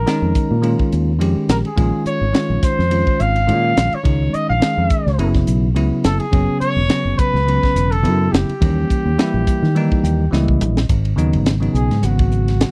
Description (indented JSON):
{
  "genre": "electric jazz fusion",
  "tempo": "105 BPM",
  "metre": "4/4",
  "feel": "swing 55% on 16ths",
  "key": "unclear",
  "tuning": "A4 = 440 Hz",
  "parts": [
    { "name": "mellow trumpet", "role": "melody", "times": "0.0-12.7 s", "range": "F#4 to E#5", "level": "-24 LUFS", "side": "equal", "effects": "none" },
    { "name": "fingered electric bass", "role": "bass", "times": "0.0-12.6 s", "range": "E1 to D#3", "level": "-20 LUFS", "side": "equal", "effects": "none" },
    { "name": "bell-like tine electric piano", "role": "accompaniment", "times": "0.1-12.7 s", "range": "C#3 to G5", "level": "-23 LUFS", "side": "equal", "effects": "none" },
    { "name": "tight funk drum kit", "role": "drums", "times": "0.1-12.7 s", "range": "hi-hat, kick drum, ride cymbal, snare drum, toms", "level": "-21 LUFS", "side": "equal", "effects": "none" }
  ],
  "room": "little or no reverb",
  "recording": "dry, close 1970s-style studio recording",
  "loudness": "-17 LUFS",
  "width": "mono",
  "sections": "0.0-10.9 A section; 10.9-12.7 B section",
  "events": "tine electric piano fill 9.8-10.9; drum fill 10.3-10.9; trumpet solo 10.9-12.7",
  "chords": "0.0 A#m7; 5.2 F#5; 8.6 D#7b9; 10.9 G#m7"
}